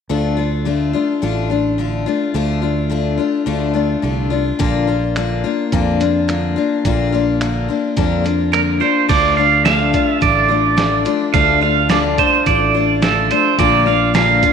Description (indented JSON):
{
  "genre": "honky-tonk and classic country",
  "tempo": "107 BPM",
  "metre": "4/4",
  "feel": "straight",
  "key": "unclear",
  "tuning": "A4 = 438 Hz",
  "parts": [
    { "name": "picked steel-string acoustic guitar", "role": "accompaniment", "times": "0.1-14.5 s", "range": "Bb2 to F4", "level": "-17 LUFS", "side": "left 7 dB", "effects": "none" },
    { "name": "fingered electric bass", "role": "bass", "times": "0.1-14.4 s", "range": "A1 to F2", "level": "-20 LUFS", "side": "right 2 dB", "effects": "none" },
    { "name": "lo-fi sampler-style drum kit", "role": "drums", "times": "4.6-14.5 s", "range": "crash cymbal, finger snaps, hi-hat, kick drum, snare drum", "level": "-21 LUFS", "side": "right 2 dB", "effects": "none" },
    { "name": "pedal steel guitar", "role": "second line", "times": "8.5-14.5 s", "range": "A4 to F5", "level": "-14 LUFS", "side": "right 9 dB", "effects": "tape echo" }
  ],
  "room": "wet echo chamber reverb, RT60 2.1 s",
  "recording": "1960s-style stereo with parts hard left and right",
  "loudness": "-14 LUFS",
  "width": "side -6 dB against mid",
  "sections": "0.1-9.1 A section; 9.1-14.5 B section",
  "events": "pedal steel guitar solo 9.1-14.5",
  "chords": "0.1 Dm; 4.6 Bb; 9.1 Dm; 13.6 Bb",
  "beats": "| 0.10 0.66 1.23 1.79 | 2.35 2.91 3.48 4.04 | 4.60 5.16 5.72 6.29 | 6.85 7.41 7.97 8.54 | 9.10 9.66 10.22 10.78 | 11.34 11.91 12.47 13.03 | 13.59 14.15"
}